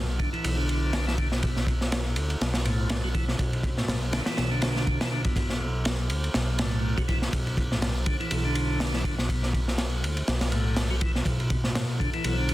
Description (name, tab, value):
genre	breakbeat, breaks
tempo	122 BPM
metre	4/4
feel	swing 56% on 16ths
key	B minor pentatonic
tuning	A4 = 440 Hz
part	tonewheel organ	riff	0.0-12.5 s	A2 to F#3	-31 LUFS	equal	slow rotary speaker, vintage 12-bit sampler grit, tape echo
part	fat analog bass	bass	0.0-12.5 s	B1 to D2	-28 LUFS	equal	none
part	crunchy breakbeat drum kit	drums	0.2-12.5 s	kick drum, ride cymbal, snare drum	-27 LUFS	equal	none
room	studio reverb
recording	dense, heavily limited modern master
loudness	-24 LUFS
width	side -16 dB against mid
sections	0.0-12.5 A section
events	none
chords	0.0 Bm